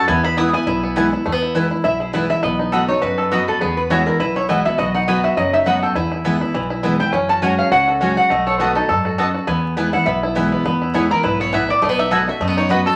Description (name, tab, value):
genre	bluegrass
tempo	204 BPM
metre	4/4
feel	swing 55% on 8ths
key	E major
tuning	A4 = 440 Hz
part	mandolin	melody	0.0-1.2, 10.9-13.0 s	A4 to D#6	-22 LUFS	equal	none
part	lap resonator guitar	second line	0.0-10.5 s	E4 to A5	-22 LUFS	equal	none
part	picked steel-string acoustic guitar	accompaniment	0.0-13.0 s	E2 to F#4	-25 LUFS	equal	none
part	bluegrass banjo	arpeggios	0.0-13.0 s	E3 to A4	-23 LUFS	equal	none
part	upright bass	bass	0.1-12.9 s	F#1 to F#2	-30 LUFS	equal	none
part	mandolin	stabs	0.4-12.8 s	B3 to B5	-24 LUFS	equal	none
room	wet studio ambience, RT60 0.5 s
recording	vinyl crackle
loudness	-18 LUFS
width	mono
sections	0.0-1.3 A section; 1.3-10.7 B section; 10.7-13.0 C section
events	resonator guitar played with a steel bar solo 1.3-10.7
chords	0.1 E; 2.4 B; 3.6 Eadd9; 4.8 B; 6.0 E; 7.1 F#sus2; 8.3 B7; 9.5 E; 11.8 B